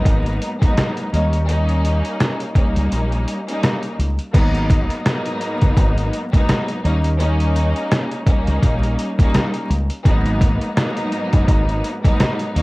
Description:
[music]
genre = hip hop, boom-bap hip-hop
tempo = 84 BPM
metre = 4/4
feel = swing 57% on 16ths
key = G# minor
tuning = A4 = 441 Hz
[part]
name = clear studio string section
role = accompaniment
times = 0.0-12.6 s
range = G#2 to D#4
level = -22 LUFS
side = equal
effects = high-pass filter, low-pass filter, cassette tape
[part]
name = deep dub fingered electric bass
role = bass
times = 0.0-12.6 s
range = F#1 to D#2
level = -19 LUFS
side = equal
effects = none
[part]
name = trip hop sampler-style drum kit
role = drums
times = 0.1-12.6 s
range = crash cymbal, hi-hat, kick drum, rim click, snare drum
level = -17 LUFS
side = equal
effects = none
[sound]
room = digital ambience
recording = home recording on cassette, vinyl crackle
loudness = -16 LUFS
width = side -22 dB against mid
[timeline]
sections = 0.0-4.3 A section; 4.3-12.6 B section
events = break 2.9-4.3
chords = 0.0 G#m7; 1.1 D#7; 4.3 G#m7; 6.8 D#7; 10.1 G#m7

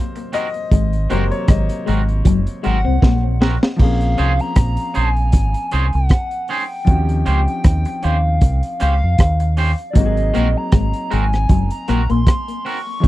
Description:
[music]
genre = lovers rock reggae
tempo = 78 BPM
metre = 4/4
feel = swing 55% on 16ths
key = unclear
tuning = A4 = 440 Hz
[part]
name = clear grand piano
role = accompaniment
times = 0.0-13.1 s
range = C3 to Eb5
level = -26 LUFS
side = left 2 dB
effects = none
[part]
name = twangy electric guitar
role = stabs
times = 0.2-12.8 s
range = C4 to C5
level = -23 LUFS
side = right 3 dB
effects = none
[part]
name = crunchy breakbeat drum kit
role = drums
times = 0.2-13.1 s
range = crash cymbal, hi-hat, kick drum, rim click, snare drum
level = -14 LUFS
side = equal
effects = none
[part]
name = electric guitar through a small old amp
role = riff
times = 0.7-3.3, 10.0-13.1 s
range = Gb3 to Db4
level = -24 LUFS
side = left 7 dB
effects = tape echo
[part]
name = deep dub fingered electric bass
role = bass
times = 0.7-13.1 s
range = Gb1 to F2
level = -17 LUFS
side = equal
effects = none
[part]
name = hollow clarinet-like synth lead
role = melody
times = 2.6-13.1 s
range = D5 to Db6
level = -24 LUFS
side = equal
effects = chorus, tape echo
[sound]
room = little or no reverb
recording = dry, close 1970s-style studio recording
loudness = -14 LUFS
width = side -16 dB against mid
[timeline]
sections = 0.0-3.8 A section; 3.8-13.1 B section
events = grand piano solo 0.0-3.8; drum fill 3.0-3.8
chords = 0.0 Ab9; 3.8 Bbm9; 6.9 Eb13; 10.0 Ab9

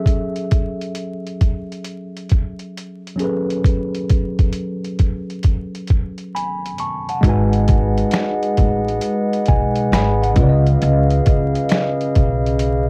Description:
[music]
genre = lo-fi hip hop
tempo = 67 BPM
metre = 4/4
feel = swing 65% on 16ths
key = F# dorian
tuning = A4 = 437 Hz
[part]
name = tine electric piano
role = accompaniment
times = 0.0-12.9 s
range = C#3 to C#6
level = -26 LUFS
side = equal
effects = low-pass filter, cassette tape
[part]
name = boom bap sampler-style drum kit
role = drums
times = 0.1-12.9 s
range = finger snaps, hi-hat, kick drum, snare drum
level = -19 LUFS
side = equal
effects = cassette tape
[part]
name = glass harmonica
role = sustained chords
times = 7.2-12.9 s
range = G#3 to F#5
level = -23 LUFS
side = equal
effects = low-pass filter, cassette tape
[part]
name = upright bass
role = bass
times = 7.2-12.9 s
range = G#1 to C#2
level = -20 LUFS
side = equal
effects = none
[sound]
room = light reverb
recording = home recording on cassette, vinyl crackle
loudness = -18 LUFS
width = mono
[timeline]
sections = 0.0-7.2 A section; 7.2-12.9 B section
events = filter sweep on tine electric piano 0.0-7.2; tine electric piano fill 12.6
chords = 0.0 F#m7; 7.2 G#m7; 10.4 C#7

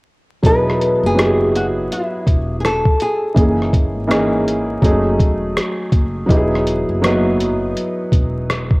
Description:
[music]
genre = lo-fi hip hop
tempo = 82 BPM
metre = 4/4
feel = swing 64% on 16ths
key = E major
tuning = A4 = 437 Hz
[part]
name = felt-muted upright piano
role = accompaniment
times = 0.4-8.8 s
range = E3 to D#5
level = -18 LUFS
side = equal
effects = cassette tape
[part]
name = upright bass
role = bass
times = 0.4-8.7 s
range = E1 to G#1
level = -22 LUFS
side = equal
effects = none
[part]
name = lo-fi sampler-style drum kit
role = drums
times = 0.4-8.8 s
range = hi-hat, kick drum, rim click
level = -16 LUFS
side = equal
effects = vintage 12-bit sampler grit
[part]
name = nylon-string guitar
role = melody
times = 0.5-5.9 s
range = E4 to B4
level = -19 LUFS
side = left 1 dB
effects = cassette tape
[sound]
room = moderate spring reverb, RT60 2.0 s, small room ambience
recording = home recording on cassette, vinyl crackle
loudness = -14 LUFS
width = side -24 dB against mid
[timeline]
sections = 0.4-8.8 A section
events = none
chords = 0.4 Emaj9; 3.4 F#13; 4.8 F#m13/E; 6.3 Emaj9

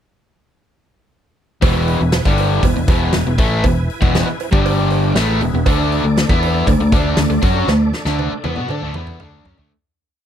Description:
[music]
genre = classic rock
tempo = 119 BPM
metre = 4/4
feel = straight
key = unclear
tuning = A4 = 439 Hz
[part]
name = tonewheel organ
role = sustained chords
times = 1.6-9.7 s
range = D4 to G#5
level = -27 LUFS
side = right 1 dB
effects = slow rotary speaker, overdrive, chorus vibrato
[part]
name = raw garage guitar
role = riff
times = 1.6-9.7 s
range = E2 to A4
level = -18 LUFS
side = left 1 dB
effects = overdrive
[part]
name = fingered electric bass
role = bass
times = 1.6-9.7 s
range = E1 to D3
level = -19 LUFS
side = equal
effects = none
[part]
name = huge arena drum kit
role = drums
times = 1.6-9.7 s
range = hi-hat, kick drum, snare drum, toms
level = -19 LUFS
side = equal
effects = none
[part]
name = cowbell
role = percussion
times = 1.6-9.1 s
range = none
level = -28 LUFS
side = right 13 dB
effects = none
[sound]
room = small room ambience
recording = dry, close 1970s-style studio recording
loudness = -14 LUFS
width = side -9 dB against mid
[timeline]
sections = 1.6-9.7 riff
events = fade-out 7.7-9.7; drum fill 7.7-9.7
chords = 1.6 E; 4.5 G5; 5.2 E; 5.7 D5

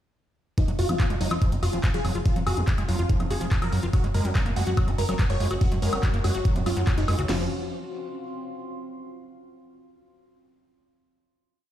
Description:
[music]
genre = psychedelic trance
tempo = 143 BPM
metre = 4/4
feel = straight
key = F phrygian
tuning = A4 = 440 Hz
[part]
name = supersaw stab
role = melody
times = 0.6-7.4 s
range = Eb4 to Db5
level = -32 LUFS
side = left 1 dB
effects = phaser, vintage 12-bit sampler grit, sidechain pumping, digital delay
[part]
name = overdriven acid bass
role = riff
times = 0.6-7.5 s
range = F3 to Gb4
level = -32 LUFS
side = equal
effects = distortion, auto-pan, sidechain pumping, digital delay
[part]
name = drum and bass drum kit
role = drums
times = 0.6-7.4 s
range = crash cymbal, kick drum, snare drum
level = -23 LUFS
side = equal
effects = overdrive
[part]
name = drum and bass drum kit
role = drums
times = 0.6-7.3 s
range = handclaps, hi-hat, woodblock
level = -33 LUFS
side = left 1 dB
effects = overdrive
[part]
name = deep dark ambient pad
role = texture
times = 2.1-8.9 s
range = C4 to Db6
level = -37 LUFS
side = equal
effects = chorus, built-in reverb, sidechain pumping
[part]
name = plucky analog bass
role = bass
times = 0.7-7.5 s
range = F1 to Gb2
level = -26 LUFS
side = equal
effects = tube saturation
[part]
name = formant-sweep wobble bass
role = second line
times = 1.7-7.3 s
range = Bb3 to F4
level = -43 LUFS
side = right 2 dB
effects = none
[sound]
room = light reverb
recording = played on a big sound system in a bare room, stone room reverb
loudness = -22 LUFS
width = side -12 dB against mid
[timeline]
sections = 0.6-7.3 groove; 7.3-9.0 final chord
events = fade-in on ambient pad 0.6-7.3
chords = 0.6 F5; 3.9 Gb5; 7.3 F5

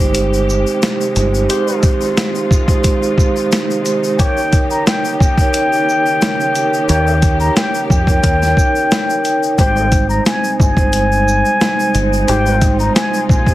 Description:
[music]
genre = hip hop, boom-bap hip-hop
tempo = 89 BPM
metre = 4/4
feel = swing 54% on 16ths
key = Ab major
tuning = A4 = 439 Hz
[part]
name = vibraphone with soft mallets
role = accompaniment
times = 0.0-13.5 s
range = G3 to G5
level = -17 LUFS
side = right 3 dB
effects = high-pass filter, low-pass filter
[part]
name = clear symphonic string section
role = sustained chords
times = 0.0-13.5 s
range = C3 to G4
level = -26 LUFS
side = left 2 dB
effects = high-pass filter, low-pass filter
[part]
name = deep dub fingered electric bass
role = bass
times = 0.0-1.5, 6.9-13.5 s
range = G1 to F2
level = -17 LUFS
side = equal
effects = none
[part]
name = boom bap sampler-style drum kit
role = drums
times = 0.1-13.5 s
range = hi-hat, kick drum, shaker, snare drum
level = -15 LUFS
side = equal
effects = none
[part]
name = tube shaker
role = percussion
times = 0.1-13.5 s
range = none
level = -30 LUFS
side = left 6 dB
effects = none
[part]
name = dark horn section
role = stabs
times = 1.5-12.7 s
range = Ab3 to Db5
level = -25 LUFS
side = left 3 dB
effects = high-pass filter, low-pass filter, digital delay
[part]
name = trumpet with plunger mute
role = melody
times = 4.2-13.5 s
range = G5 to Bb5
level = -17 LUFS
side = left 2 dB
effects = high-pass filter, low-pass filter, digital delay
[sound]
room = light reverb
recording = heavily compressed radio sound, multiband compression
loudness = -12 LUFS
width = side -15 dB against mid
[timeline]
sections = 0.0-13.5 A section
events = break 0.0-4.2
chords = 0.0 Abmaj7; 4.2 Eb7; 9.6 Abmaj7

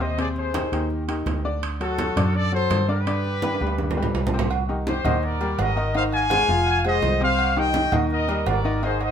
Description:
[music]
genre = latin, salsa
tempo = 167 BPM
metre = 4/4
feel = straight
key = C minor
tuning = A4 = 440 Hz
[part]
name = clear trumpet section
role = melody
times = 0.0-9.1 s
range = F#4 to Ab5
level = -24 LUFS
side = left 2 dB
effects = none
[part]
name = clear grand piano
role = accompaniment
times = 0.0-9.1 s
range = C3 to F5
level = -27 LUFS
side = left 3 dB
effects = none
[part]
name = vintage muted fingered electric bass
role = bass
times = 0.0-9.1 s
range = F1 to G2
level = -25 LUFS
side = right 1 dB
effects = none
[part]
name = congas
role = percussion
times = 0.0-9.1 s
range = none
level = -30 LUFS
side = equal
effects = none
[part]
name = timbales and agogo bells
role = percussion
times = 0.2-9.1 s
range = none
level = -30 LUFS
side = right 7 dB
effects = none
[sound]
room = moderate studio reverb, RT60 0.9 s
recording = minimal, uncompressed stereo recording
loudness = -20 LUFS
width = side -8 dB against mid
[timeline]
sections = 0.0-4.5 A section; 4.5-9.1 B section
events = drum fill 3.4-4.5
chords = 0.2 Abmaj7/Eb; 1.6 D7; 3.1 G; 4.5 Cm; 5.2 Eb; 5.9 Ab6; 6.7 Fm; 7.4 Cm; 8.1 Eb

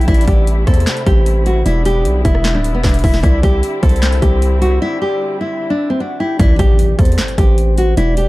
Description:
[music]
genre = hip hop, trap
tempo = 152 BPM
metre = 4/4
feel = half-time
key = unclear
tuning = A4 = 440 Hz
[part]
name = nylon-string guitar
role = melody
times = 0.0-8.3 s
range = B3 to A4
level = -18 LUFS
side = equal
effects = none
[part]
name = soft octave-layered synth lead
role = second line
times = 0.0-8.3 s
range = C5 to G5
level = -24 LUFS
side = left 1 dB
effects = chorus, ping-pong delay
[part]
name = muted studio string section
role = sustained chords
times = 0.0-6.4 s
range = C3 to E4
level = -27 LUFS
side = left 1 dB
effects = none
[part]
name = distorted 808-style bass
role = bass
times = 0.0-8.3 s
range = D1 to E2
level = -14 LUFS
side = equal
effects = distortion
[part]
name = trap drum kit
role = drums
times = 0.0-8.3 s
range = handclaps, hi-hat, kick drum, rim click, snare drum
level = -14 LUFS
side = equal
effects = overdrive
[part]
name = impact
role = sound effects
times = 6.4-8.0 s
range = none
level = -21 LUFS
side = equal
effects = none
[sound]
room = digital ambience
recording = dark, warm production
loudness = -11 LUFS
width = side -19 dB against mid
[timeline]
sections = 0.0-6.4 A section; 6.4-8.3 B section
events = break 4.8-6.4; impact 6.4-8.0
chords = 0.1 Am7; 1.7 Em7; 3.2 Cadd9; 6.4 Am7

